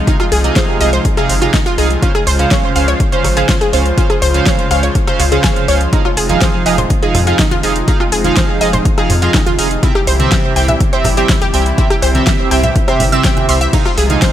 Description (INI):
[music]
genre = progressive house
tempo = 123 BPM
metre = 4/4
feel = straight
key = F minor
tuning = A4 = 440 Hz
[part]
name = lush unison pad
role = sustained chords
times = 0.0-14.3 s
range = C3 to C5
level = -20 LUFS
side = equal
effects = chorus, sidechain pumping
[part]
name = analog pluck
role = arpeggios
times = 0.1-14.3 s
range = Eb4 to E6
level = -18 LUFS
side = left 1 dB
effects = chorus, sidechain pumping, digital delay
[part]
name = chorused polysynth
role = stabs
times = 0.1-14.3 s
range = C3 to F5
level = -17 LUFS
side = right 4 dB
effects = vintage 12-bit sampler grit, sidechain pumping, digital delay
[part]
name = deep house drum kit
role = drums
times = 0.1-14.3 s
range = hi-hat, ride cymbal, rim click, snare drum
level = -19 LUFS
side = equal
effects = none
[part]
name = electronic kick drum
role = drums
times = 0.1-14.3 s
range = none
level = -16 LUFS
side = equal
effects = overdrive
[part]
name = round analog bass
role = bass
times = 0.3-14.2 s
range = F1 to F2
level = -16 LUFS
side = equal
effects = sidechain pumping
[part]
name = woodblock and congas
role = percussion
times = 6.3-14.2 s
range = none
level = -23 LUFS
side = right 2 dB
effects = sidechain pumping on perc
[sound]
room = light reverb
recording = none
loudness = -10 LUFS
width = side -11 dB against mid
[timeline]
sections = 0.0-14.3 A section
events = none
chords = 0.0 Fm7; 2.0 Dbmaj7; 5.9 Fm7; 9.8 C; 13.7 Fm7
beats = | 0.07 0.56 1.05 1.54 | 2.02 2.51 3.00 3.49 | 3.98 4.46 4.95 5.44 | 5.93 6.42 6.90 7.39 | 7.88 8.37 8.85 9.34 | 9.83 10.32 10.80 11.29 | 11.78 12.27 12.76 13.24 | 13.73 14.22